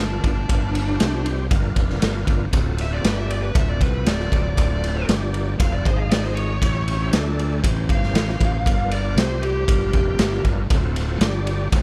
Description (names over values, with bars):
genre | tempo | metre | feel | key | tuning
blues rock power trio and southern rock | 118 BPM | 4/4 | straight | unclear | A4 = 436 Hz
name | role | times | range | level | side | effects
bluesy overdriven lead guitar | second line | 0.0-10.4 s | D4 to E#5 | -30 LUFS | equal | distortion
overdriven tonewheel organ | sustained chords | 0.0-11.8 s | E3 to D#5 | -33 LUFS | equal | slow rotary speaker, chorus vibrato
fuzz fingered electric bass | bass | 0.0-11.8 s | D1 to D2 | -26 LUFS | equal | overdrive
raw garage drum kit | drums | 0.2-11.8 s | kick drum, ride cymbal, snare drum | -23 LUFS | equal | none
room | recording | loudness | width
small room ambience | none | -21 LUFS | mono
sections
0.0-11.8 A section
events
lead electric guitar solo 0.0-11.8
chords
0.0 G7#9; 1.0 C5; 1.5 G7#9; 2.5 D7#9; 3.0 G5; 3.6 D7#9; 5.1 G5; 5.6 D7#9; 5.9 G#5; 6.6 A7#9; 7.1 D5; 7.6 A7#9; 8.7 G7#9; 9.2 C5; 9.7 G7#9; 10.7 D7#9; 11.2 G5